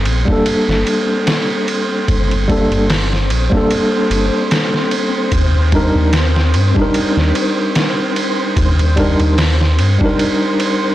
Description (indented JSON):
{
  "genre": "trip hop",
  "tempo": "74 BPM",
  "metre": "4/4",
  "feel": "swing 56% on 16ths",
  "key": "G minor",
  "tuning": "A4 = 440 Hz",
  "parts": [
    { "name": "round analog bass", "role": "bass", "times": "0.0-10.0 s", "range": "G1 to G2", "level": "-14 LUFS", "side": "equal", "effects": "none" },
    { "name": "flickering grainy texture", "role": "texture", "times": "0.0-10.9 s", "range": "C4 to C5", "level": "-23 LUFS", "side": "left 1 dB", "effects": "built-in reverb" },
    { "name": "trip hop sampler-style drum kit", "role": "drums", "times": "0.1-10.8 s", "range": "hi-hat, kick drum, ride cymbal, snare drum", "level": "-18 LUFS", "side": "right 1 dB", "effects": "small room ambience" },
    { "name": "tine electric piano", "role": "accompaniment", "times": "0.3-10.9 s", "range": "G3 to Bb4", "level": "-17 LUFS", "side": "equal", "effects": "tremolo, low-pass filter, tape echo" }
  ],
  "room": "light reverb",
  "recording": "blown-out, overdriven recording, vinyl crackle, overdrive",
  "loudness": "-12 LUFS",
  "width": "side -14 dB against mid",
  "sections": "0.0-10.9 A section",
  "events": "filter sweep on tine electric piano 0.0-10.9",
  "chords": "0.0 Gmadd9; 5.3 Ebmaj7"
}